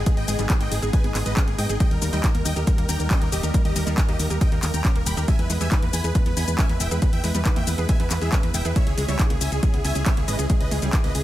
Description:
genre	uplifting trance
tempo	138 BPM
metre	4/4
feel	straight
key	unclear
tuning	A4 = 439 Hz
part	supersaw chords	melody	0.0-11.2 s	G4 to B5	-30 LUFS	equal	sidechain pumping, ping-pong delay
part	analog string pad	sustained chords	0.0-11.2 s	G3 to E4	-33 LUFS	equal	ensemble chorus, sidechain pumping
part	wide unison pluck	arpeggios	0.0-11.1 s	G3 to G#4	-33 LUFS	right 2 dB	sidechain pumping, ping-pong delay
part	solid FM bass	bass	0.0-11.2 s	D#1 to G#2	-25 LUFS	equal	sidechain pumping
part	electronic kick drum	drums	0.1-11.0 s	none	-21 LUFS	equal	none
part	punchy analog drum machine	drums	0.1-11.2 s	handclaps, hi-hat, shaker	-29 LUFS	left 2 dB	none
room	digital ambience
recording	none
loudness	-19 LUFS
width	side -14 dB against mid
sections	0.0-11.2 A section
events	none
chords	0.0 G#m; 1.8 D#; 5.3 E; 8.8 C#m

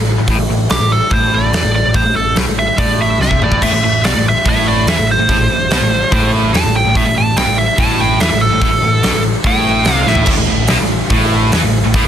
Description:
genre	hard rock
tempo	144 BPM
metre	4/4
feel	straight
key	A minor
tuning	A4 = 441 Hz
part	crunchy overdriven guitar	riff	0.0-12.0 s	A2 to E3	-18 LUFS	equal	none
part	overdriven picked electric bass	bass	0.0-12.1 s	A1 to E2	-18 LUFS	equal	none
part	huge arena drum kit	drums	0.3-12.0 s	crash cymbal, hi-hat, kick drum, snare drum, toms	-16 LUFS	equal	soft clipping on kick
part	nasal lead guitar with a parked wah	melody	0.7-10.3 s	G4 to A5	-16 LUFS	right 2 dB	overdrive, digital delay
part	distorted electric guitar	riff	3.6-12.0 s	A2 to E3	-20 LUFS	right 1 dB	distortion
room	little or no reverb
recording	dense, heavily limited modern master, lossy compression artefacts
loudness	-11 LUFS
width	side -9 dB against mid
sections	0.0-10.3 A section; 10.3-12.1 B section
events	lead electric guitar solo 0.0-10.3; drum fill 3.2-3.6, 10.1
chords	0.0 A5

